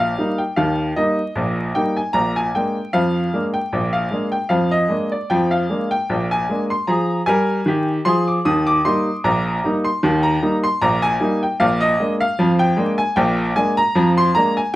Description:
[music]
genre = ragtime piano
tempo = 76 BPM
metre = 2/4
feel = swing 54% on 16ths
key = unclear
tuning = A4 = 440 Hz
[part]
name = clear upright piano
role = solo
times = 0.0-14.7 s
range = Bb1 to Eb6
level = -16 LUFS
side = equal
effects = none
[sound]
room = light reverb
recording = vinyl crackle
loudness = -16 LUFS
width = side -16 dB against mid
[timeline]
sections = 0.0-14.8 A section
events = none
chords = 0.0 Eb; 2.2 Bb7; 8.5 Eb; 11.6 Bb7

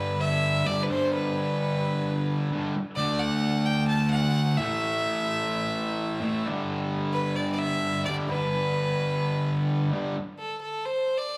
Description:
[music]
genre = rock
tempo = 130 BPM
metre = 4/4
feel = straight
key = unclear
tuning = A4 = 440 Hz
[part]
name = bright violin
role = melody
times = 0.0-11.4 s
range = A4 to A5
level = -31 LUFS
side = equal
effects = slapback echo
[part]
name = fuzz guitar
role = riff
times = 0.0-10.2 s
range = G2 to D4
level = -28 LUFS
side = equal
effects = distortion
[sound]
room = light reverb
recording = live gig heard through the venue's PA, club reverb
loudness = -27 LUFS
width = mono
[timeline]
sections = 0.0-10.4 A section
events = none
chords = 0.0 G; 3.0 D; 4.6 A5; 6.4 G; 10.4 N.C.

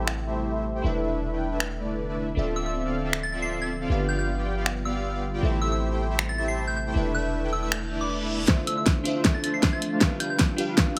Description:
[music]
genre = future bass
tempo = 157 BPM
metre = 4/4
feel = half-time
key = unclear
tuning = A4 = 436 Hz
[part]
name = glassy digital keys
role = accompaniment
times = 0.0-11.0 s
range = C4 to F5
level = -36 LUFS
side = equal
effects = chorus, sidechain pumping, tape echo
[part]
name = ethereal airy pad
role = sustained chords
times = 0.0-11.0 s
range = C3 to E5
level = -40 LUFS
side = equal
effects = ensemble chorus, built-in reverb, sidechain pumping
[part]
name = soft supersaw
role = riff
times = 0.0-11.0 s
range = G3 to G5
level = -32 LUFS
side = equal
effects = phaser, sidechain pumping, low-pass filter
[part]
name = warm 808-style bass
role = bass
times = 0.0-11.0 s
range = D1 to A1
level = -32 LUFS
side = equal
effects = sidechain pumping, high-pass filter
[part]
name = pop drum kit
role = drums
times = 0.1-11.0 s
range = finger snaps, hi-hat, snare drum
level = -26 LUFS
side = equal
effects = none
[part]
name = soft synth bell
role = melody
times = 2.6-11.0 s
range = D6 to C7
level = -35 LUFS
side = equal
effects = chorus, phaser, sidechain pumping, low-pass filter, tape echo
[part]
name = reverse cymbal and riser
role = sound effects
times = 7.9-11.0 s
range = none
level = -41 LUFS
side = equal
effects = none
[part]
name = electronic kick drum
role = drums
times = 8.5-10.9 s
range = none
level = -27 LUFS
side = equal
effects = none
[sound]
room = light reverb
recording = none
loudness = -26 LUFS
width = mono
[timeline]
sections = 0.0-8.5 A section; 8.5-11.0 B section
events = filter sweep on supersaw synth 0.0-8.5, 8.5-11.0; reverse cymbal 7.9-8.5; build-up 8.5-11.0; drum fill 8.5-11.0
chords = 0.0 Am7; 0.8 E7sus4; 2.4 Dm9; 3.9 G7; 5.4 Am7; 7.0 E7sus4; 8.5 Dm9; 10.0 G7

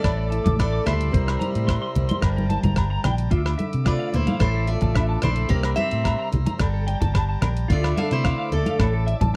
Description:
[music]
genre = highlife guitar band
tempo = 110 BPM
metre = 4/4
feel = straight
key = D minor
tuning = A4 = 441 Hz
[part]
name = picked steel-string acoustic guitar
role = melody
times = 0.0-9.0 s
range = E4 to F5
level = -30 LUFS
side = equal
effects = none
[part]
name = breathy tenor saxophone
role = second line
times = 0.0-9.0 s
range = G3 to D4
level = -35 LUFS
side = equal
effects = none
[part]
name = nylon-string guitar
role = accompaniment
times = 0.0-9.4 s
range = A2 to E5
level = -35 LUFS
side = equal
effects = none
[part]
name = overdriven combo organ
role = sustained chords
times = 0.0-9.4 s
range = D5 to D6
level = -40 LUFS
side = equal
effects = none
[part]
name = clean electric guitar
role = arpeggios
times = 0.0-9.3 s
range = F4 to D6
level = -34 LUFS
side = equal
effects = ensemble chorus, slapback echo
[part]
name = dusty soul sampler-style drum kit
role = drums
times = 0.0-9.3 s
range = hi-hat, kick drum, rim click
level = -26 LUFS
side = equal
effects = none
[part]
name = agogo bells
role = percussion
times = 0.0-8.9 s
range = none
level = -38 LUFS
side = equal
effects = none
[part]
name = fingered electric bass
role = bass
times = 0.1-9.4 s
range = G1 to C3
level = -26 LUFS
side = equal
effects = none
[part]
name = congas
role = percussion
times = 0.5-9.3 s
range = none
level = -28 LUFS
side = equal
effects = none
[sound]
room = little or no reverb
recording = dry, close 1970s-style studio recording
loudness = -22 LUFS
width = mono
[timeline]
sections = 0.0-9.4 A section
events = none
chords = 0.0 Asus4; 1.1 C7; 2.2 Gmadd9; 3.3 Dmadd9; 4.4 Asus4; 5.5 C7; 6.6 Gmadd9; 7.7 Dmadd9; 8.8 Asus4

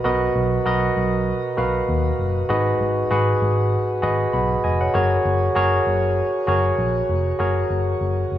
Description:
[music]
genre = 1980s-style pop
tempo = 98 BPM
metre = 4/4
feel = swing 55% on 16ths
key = F# major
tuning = A4 = 440 Hz
[part]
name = barky tine electric piano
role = accompaniment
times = 0.0-8.4 s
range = G#2 to B5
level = -20 LUFS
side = equal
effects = overdrive, shimmer reverb
[part]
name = vintage muted fingered electric bass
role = bass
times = 0.0-8.4 s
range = E#1 to D#2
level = -23 LUFS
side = equal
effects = none
[sound]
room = moderate lush hall reverb, RT60 2.9 s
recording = small room ambience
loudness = -18 LUFS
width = side -12 dB against mid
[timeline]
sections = 0.0-7.4 A section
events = none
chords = 0.0 Bmaj7; 2.5 G#m7; 4.9 F#add9

